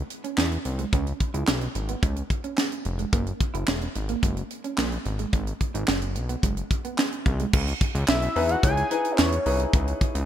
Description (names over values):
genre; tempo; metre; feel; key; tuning
early-eighties boogie funk; 109 BPM; 4/4; straight; C# dorian; A4 = 440 Hz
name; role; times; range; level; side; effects
fat analog bass; bass; 0.0-10.2 s; E1 to E2; -27 LUFS; equal; none
tight funk drum kit; drums; 0.1-10.3 s; crash cymbal, handclaps, hi-hat, kick drum, snare drum; -25 LUFS; equal; none
electric guitar through a small old amp; riff; 0.2-7.5 s; G#3 to E4; -34 LUFS; right 7 dB; wide subtle chorus
fat analog lead; melody; 8.1-9.6 s; B#4 to G#5; -26 LUFS; left 1 dB; ping-pong delay
dark grand piano; accompaniment; 8.4-10.2 s; D#4 to C#5; -28 LUFS; left 4 dB; wide subtle chorus
room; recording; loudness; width
light reverb, small room reverb; bright 1980s-style digital production; -23 LUFS; side -11 dB against mid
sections
0.0-7.5 A section; 7.5-10.3 B section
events
none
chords
0.0 C#m7; 3.1 F#9; 5.1 G#m7; 7.5 C#m9